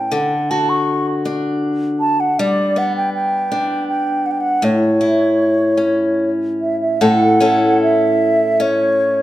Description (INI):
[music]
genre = celtic folk, Celtic slow air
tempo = 78 BPM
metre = 3/4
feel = uneven beats, rubato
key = A mixolydian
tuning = A4 = 440 Hz
[part]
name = mellow baroque flute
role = melody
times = 0.0-9.2 s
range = C#5 to C#6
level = -16 LUFS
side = right 1 dB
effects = none
[part]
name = picked old ladder-braced acoustic guitar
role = accompaniment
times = 0.0-9.2 s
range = A2 to A4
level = -17 LUFS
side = left 1 dB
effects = none
[sound]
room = wet recital hall reverb, RT60 1.5 s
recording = none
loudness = -14 LUFS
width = side -14 dB against mid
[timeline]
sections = 0.0-7.0 A section; 7.0-9.2 B section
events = none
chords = 0.1 D; 2.4 G; 4.6 A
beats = | 0.11 0.87 1.63 | 2.38 3.14 3.88 | 4.63 5.39 6.19 | 7.01 7.81 8.61